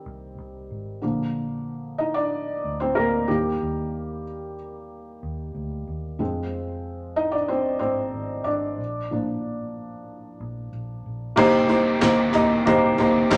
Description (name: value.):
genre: piano-driven pop.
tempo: 93 BPM.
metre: 4/4.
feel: straight.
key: C minor.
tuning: A4 = 440 Hz.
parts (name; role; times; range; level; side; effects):
felt-muted upright piano; accompaniment; 0.0-13.4 s; C3 to Eb5; -25 LUFS; equal; none.
vintage muted fingered electric bass; bass; 0.1-13.4 s; F1 to Eb2; -38 LUFS; equal; none.
crunchy overdriven guitar; riff; 11.4-13.4 s; C3 to G4; -31 LUFS; equal; none.
huge arena drum kit; drums; 11.4-13.4 s; crash cymbal, handclaps, hi-hat, kick drum, snare drum, toms; -31 LUFS; equal; none.
group handclap; percussion; 12.0-13.4 s; none; -39 LUFS; equal; none.
room: wet large studio reverb, RT60 1.4 s.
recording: none.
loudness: -24 LUFS.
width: mono.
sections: 0.0-11.4 A section; 11.4-13.4 B section.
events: felt piano solo 0.0-11.4.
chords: 0.0 Cm; 1.0 Bb; 3.3 Eb; 6.2 Fm; 8.8 Bb; 11.4 Cm7.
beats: 0.38 | 1.03 1.68 2.32 2.97 | 3.62 4.26 4.91 5.56 | 6.20 6.85 7.50 8.14 | 8.79 9.44 10.08 10.73 | 11.37 12.02 12.67 13.31.